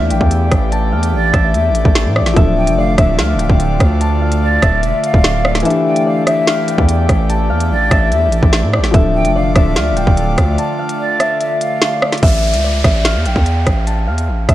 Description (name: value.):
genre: hip hop, drill.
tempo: 146 BPM.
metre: 4/4.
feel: half-time.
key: D minor.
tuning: A4 = 440 Hz.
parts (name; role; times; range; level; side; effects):
concert harp; melody; 0.0-14.5 s; D5 to A5; -19 LUFS; left 1 dB; digital delay.
breathy mellow jazz flute; second line; 0.0-12.2 s; D5 to G5; -22 LUFS; right 1 dB; digital delay.
dark grand piano; accompaniment; 0.0-12.2 s; E3 to A4; -22 LUFS; left 4 dB; none.
airy breathy pad; sustained chords; 0.0-12.2 s; D3 to D5; -21 LUFS; equal; chorus.
distorted 808-style bass; bass; 0.0-14.5 s; D1 to A2; -16 LUFS; equal; distortion.
drill drum kit; drums; 0.1-14.5 s; hi-hat, kick drum, rim click, snare drum; -14 LUFS; equal; vintage 12-bit sampler grit.
downlifter; sound effects; 12.2-14.5 s; none; -24 LUFS; equal; none.
room: light reverb, digital ambience.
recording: none.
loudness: -11 LUFS.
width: side -14 dB against mid.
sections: 0.0-12.2 A section; 12.2-14.5 B section.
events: kick muted 5.7-6.5; break 10.6-12.2.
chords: 0.0 A7sus4; 2.4 Dm; 5.7 A7sus4; 8.9 Dm; 12.2 A5.